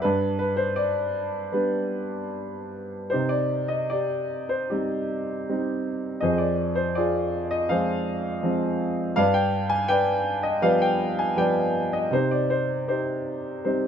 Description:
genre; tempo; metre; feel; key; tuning
classical, lyrical solo piano; 79 BPM; 4/4; uneven beats, rubato; C harmonic minor from 3.1 s; A4 = 440 Hz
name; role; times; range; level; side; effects
warm concert grand piano; solo; 0.0-13.9 s; F2 to Ab5; -22 LUFS; equal; none
room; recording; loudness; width
light reverb; close, detailed microphones; -22 LUFS; side -8 dB against mid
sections
0.0-3.1 A section; 3.1-13.9 B section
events
none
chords
0.0 G; 3.1 Cm; 6.2 Fm; 9.2 G7; 12.1 Cm

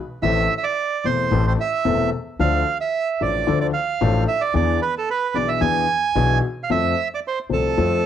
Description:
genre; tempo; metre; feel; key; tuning
tango; 111 BPM; 4/4; rubato; A harmonic minor; A4 = 440 Hz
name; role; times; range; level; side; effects
bandoneon; melody; 0.2-8.1 s; A4 to G#5; -21 LUFS; right 6 dB; cassette tape
warm grand piano; accompaniment; 0.2-8.0 s; E1 to A4; -22 LUFS; left 6 dB; none
upright bass; bass; 0.2-8.0 s; E1 to F2; -25 LUFS; equal; none
room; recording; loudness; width
light reverb, studio reverb; home recording on cassette; -18 LUFS; side -10 dB against mid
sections
0.0-8.1 A section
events
none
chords
0.2 Am; 2.4 Dm; 4.6 E7; 6.7 F

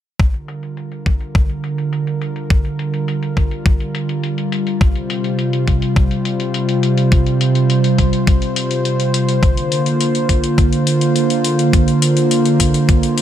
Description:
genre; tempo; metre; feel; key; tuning
synthwave; 104 BPM; 4/4; straight; unclear; A4 = 438 Hz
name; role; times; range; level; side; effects
warm analog pad; sustained chords; 0.2-13.2 s; C3 to C5; -16 LUFS; right 1 dB; chorus, sidechain pumping
electronic hi-hat; drums; 0.2-13.2 s; none; -24 LUFS; left 6 dB; overdrive, low-pass filter on hats, low-pass filter on room
electronic kick drum; drums; 0.2-13.0 s; none; -14 LUFS; equal; overdrive
room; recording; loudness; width
moderate plate reverb, RT60 3.4 s; bright 1980s-style digital production; -14 LUFS; side -10 dB against mid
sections
0.2-13.2 A section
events
filter sweep on analog synth pad 0.2-13.2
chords
0.2 Gm7; 4.8 Fsus2; 9.4 Bbadd9

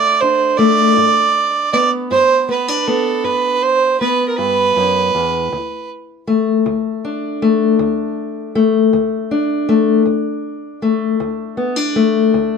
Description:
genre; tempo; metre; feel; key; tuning
acoustic country blues, solo or duo; 53 BPM (dotted quarters); 12/8; straight; unclear; A4 = 442 Hz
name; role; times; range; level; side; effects
warm fiddle; melody; 0.0-5.9 s; A4 to D5; -14 LUFS; right 5 dB; none
fingerpicked steel-string acoustic guitar; accompaniment; 0.0-12.6 s; D2 to D4; -16 LUFS; left 4 dB; none
room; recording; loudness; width
light reverb; none; -13 LUFS; side -6 dB against mid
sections
0.0-12.6 A section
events
none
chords
0.0 D5; 1.0 G; 5.5 D5

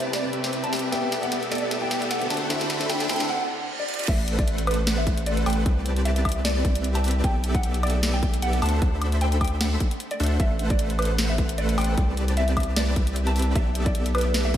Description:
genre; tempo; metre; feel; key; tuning
future bass; 152 BPM; 4/4; swing 55% on 16ths, half-time; A dorian; A4 = 440 Hz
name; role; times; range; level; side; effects
mallet-like synth pluck; melody; 0.0-14.6 s; B4 to A5; -30 LUFS; equal; lush chorus, sidechain pumping, diffuse ambient delay
warm grand piano; accompaniment; 0.0-3.3 s; C3 to C5; -32 LUFS; left 2 dB; wide subtle chorus, sidechain pumping, diffuse ambient delay
dense compressed supersaw; riff; 0.0-14.6 s; A3 to B5; -29 LUFS; equal; sidechain pumping, low-pass filter, diffuse ambient delay
saturated sub bass; bass; 0.0-14.6 s; A1 to D2; -25 LUFS; equal; sidechain pumping, high-pass filter
trap drum kit; drums; 0.0-14.6 s; crash cymbal, hi-hat, snare drum, woodblock; -30 LUFS; equal; high-pass filter on snare, high-pass filter on hats, high-pass filter on cymbals, high-pass filter on perc, high-pass filter on room
riser and reverse cymbal; sound effects; 1.4-4.1 s; none; -36 LUFS; right 2 dB; none
electronic kick drum; drums; 4.1-14.6 s; none; -24 LUFS; equal; none
room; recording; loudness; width
wet lush hall reverb, RT60 1.9 s; dreamy mix soaked in reverb; -21 LUFS; side -11 dB against mid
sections
0.0-4.1 A section; 4.1-14.6 B section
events
build-up 0.0-4.1; drum fill 0.0-3.3, 3.9; break 3.3-4.1; reverse cymbal 3.3-4.1; drop 4.1-14.6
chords
0.0 Cmaj7; 0.9 G69/B; 2.3 D9; 4.1 Am69; 5.7 Cmaj7; 7.2 G69/B; 8.6 D9; 10.4 Am69; 12.0 Cmaj7; 13.6 G69/B

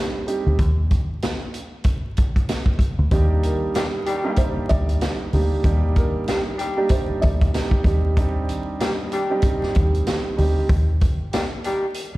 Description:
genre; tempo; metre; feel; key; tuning
hip hop, boom-bap hip-hop; 95 BPM; 4/4; swing 58% on 16ths; Eb major; A4 = 441 Hz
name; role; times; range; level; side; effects
dark baby grand piano; accompaniment; 0.0-10.7 s; G3 to G4; -25 LUFS; right 2 dB; cassette tape, high-pass filter, low-pass filter
vintage drum kit; drums; 0.3-12.1 s; hi-hat, kick drum, snare drum; -22 LUFS; equal; none
deep dub fingered electric bass; bass; 0.5-12.2 s; D2 to Eb2; -20 LUFS; equal; none
dark upright piano; melody; 3.4-8.1 s; Bb4 to D5; -31 LUFS; equal; high-pass filter, low-pass filter, analog delay
mellow horn section; stabs; 3.7-11.8 s; Eb3 to G4; -28 LUFS; left 2 dB; high-pass filter, low-pass filter, analog delay
room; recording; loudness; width
little or no reverb; played on a big sound system in a bare room, large studio reverb, vinyl crackle; -18 LUFS; side -18 dB against mid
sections
0.0-3.1 A section; 3.1-12.2 B section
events
break 12.0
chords
0.0 Cmadd9; 3.1 Ebmaj7; 7.9 Cmadd9

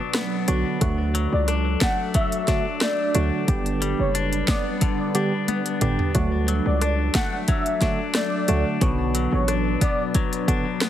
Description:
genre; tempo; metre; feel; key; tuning
dancehall; 90 BPM; 4/4; straight; D major; A4 = 440 Hz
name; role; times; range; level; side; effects
glassy FM pad; sustained chords; 0.0-10.9 s; F#3 to B4; -29 LUFS; right 1 dB; ensemble chorus, built-in reverb, sidechain pumping
clean electric guitar; arpeggios; 0.0-10.9 s; B2 to D4; -28 LUFS; left 7 dB; digital delay
afro-pop drum kit; drums; 0.1-10.9 s; hi-hat, kick drum, rim click, snare drum, toms; -24 LUFS; equal; none
percussive organ stab; accompaniment; 0.5-10.7 s; D3 to G4; -26 LUFS; right 3 dB; chorus
hard-hitting 808-style bass; bass; 0.5-9.8 s; F#1 to D2; -24 LUFS; equal; none
warm velvety synth lead; melody; 1.3-10.0 s; C#5 to F#5; -28 LUFS; equal; chorus, digital delay
room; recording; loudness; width
light reverb; heavily compressed radio sound; -20 LUFS; side -11 dB against mid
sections
0.0-10.9 A section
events
drum fill 5.5-6.1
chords
0.0 Bm; 0.8 D; 3.5 G; 6.1 D; 8.8 Bm

